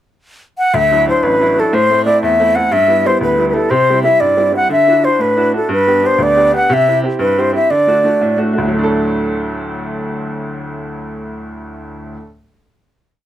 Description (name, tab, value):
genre	celtic folk, Celtic jig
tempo	120 BPM (dotted quarters)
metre	6/8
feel	straight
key	D mixolydian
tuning	A4 = 438 Hz
part	wooden flute	melody	0.6-8.4 s	A4 to F#5	-12 LUFS	left 1 dB	none
part	bright upright piano	accompaniment	0.7-12.3 s	A1 to A4	-17 LUFS	right 1 dB	none
room	light reverb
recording	none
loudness	-11 LUFS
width	side -12 dB against mid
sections	0.0-0.7 pickup bar; 0.7-8.7 A section; 8.7-10.7 final chord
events	none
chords	0.0 N.C.; 0.7 Dadd9; 1.7 Am; 2.7 G6; 3.7 C; 4.7 Dadd9; 5.7 G; 6.7 C; 7.7 D